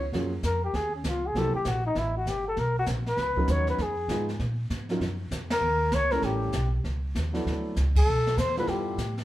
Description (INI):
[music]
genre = jazz, small-group swing and bop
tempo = 197 BPM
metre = 4/4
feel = swing 63% on 8ths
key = unclear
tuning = A4 = 441 Hz
[part]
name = breathy flugelhorn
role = melody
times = 0.0-9.2 s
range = C#4 to C#5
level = -28 LUFS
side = left 1 dB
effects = none
[part]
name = upright bass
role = bass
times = 0.0-9.2 s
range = G1 to A#2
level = -29 LUFS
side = equal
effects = none
[part]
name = warm grand piano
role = accompaniment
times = 0.1-9.0 s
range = F#3 to Cb5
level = -32 LUFS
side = right 1 dB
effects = none
[part]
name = jazz brush drum kit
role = drums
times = 0.1-9.2 s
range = brushed snare drum, hi-hat, kick drum, ride cymbal, snare drum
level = -32 LUFS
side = equal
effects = none
[sound]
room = moderate large studio reverb, RT60 0.9 s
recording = band playing live in one room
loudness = -25 LUFS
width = side -15 dB against mid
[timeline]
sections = 0.1-9.2 A section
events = band accent 5.5, 7.9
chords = 0.1 F#maj9; 1.3 C7#11; 2.6 Bmaj9; 3.8 Fm7b5; 4.4 A#5; 5.0 D#m9; 6.2 A7; 7.5 D69; 8.7 G13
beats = | 0.13 0.43 0.74 1.04 | 1.35 1.65 1.96 2.26 | 2.57 2.87 3.18 3.48 | 3.79 4.09 4.40 4.71 | 5.01 5.32 5.62 5.92 | 6.23 6.54 6.84 7.15 | 7.45 7.76 8.06 8.37 | 8.67 8.98